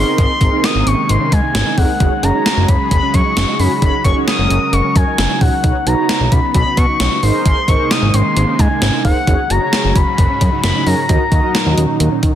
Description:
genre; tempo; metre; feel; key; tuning
synth-pop; 132 BPM; 4/4; straight; unclear; A4 = 440 Hz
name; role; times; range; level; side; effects
expressive synth lead; melody; 0.0-12.3 s; Gb5 to Eb6; -18 LUFS; left 3 dB; chorus, digital delay
mellow synth brass; accompaniment; 0.0-11.8 s; C4 to Eb5; -22 LUFS; right 2 dB; chorus
lush unison pad; sustained chords; 0.0-12.3 s; Ab2 to Bb4; -22 LUFS; right 1 dB; chorus
soft round pluck; arpeggios; 0.0-12.3 s; Db4 to Eb4; -25 LUFS; right 8 dB; chorus, digital delay
fat analog bass; bass; 0.0-12.3 s; F1 to Eb3; -16 LUFS; equal; none
gated 80s digital drum machine; drums; 0.2-12.3 s; hi-hat, kick drum, snare drum; -16 LUFS; equal; gated reverb, gated reverb snare
room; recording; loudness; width
light reverb, digital ambience; dense, heavily limited modern master; -12 LUFS; side -10 dB against mid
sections
0.0-12.3 A section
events
none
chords
0.0 Abadd9; 2.0 Gbsus2; 5.6 Badd9; 7.2 Abadd9; 9.3 Gbsus2; 11.1 Ebm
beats
| 0.18 0.64 1.09 1.55 | 2.00 2.46 2.91 3.37 | 3.82 4.27 4.73 5.18 | 5.64 6.09 6.55 7.00 | 7.46 7.91 8.37 8.82 | 9.27 9.73 10.18 10.64 | 11.09 11.55 12.00

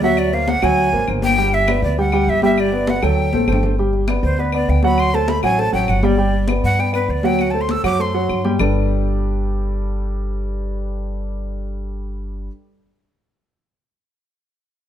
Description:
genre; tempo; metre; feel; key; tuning
Afro-Cuban jazz; 199 BPM; 4/4; straight; G major; A4 = 440 Hz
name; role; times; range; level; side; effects
breathy bright jazz flute; melody; 0.0-8.5 s; B4 to E6; -21 LUFS; equal; none
warm baby grand piano; accompaniment; 0.0-12.5 s; F#3 to G5; -20 LUFS; right 1 dB; none
upright bass; bass; 0.0-12.5 s; G1 to G2; -21 LUFS; equal; none
congas; percussion; 0.0-8.7 s; none; -24 LUFS; left 5 dB; none
claves; percussion; 0.2-8.7 s; none; -30 LUFS; left 6 dB; none
room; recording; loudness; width
moderate stone room reverb, RT60 1.1 s; band playing live in one room; -16 LUFS; side -10 dB against mid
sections
0.0-3.8 A section; 3.8-8.6 B section; 8.6-11.0 C section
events
drum fill 3.3-3.8; flute solo 3.8-8.6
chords
0.2 Daug7; 1.4 Gmaj7; 3.2 D7; 3.8 G; 5.0 D7; 6.2 G; 7.4 D7; 8.6 Gadd9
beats
| 0.18 0.48 0.78 1.08 | 1.38 1.68 1.98 2.28 | 2.58 2.88 3.18 3.48 | 3.78 4.08 4.38 4.68 | 4.98 5.28 5.58 5.88 | 6.18 6.49 6.79 7.09 | 7.39 7.69 7.99 8.29 | 8.60 8.90 9.20 9.50 | 9.80 10.11 10.41 10.71

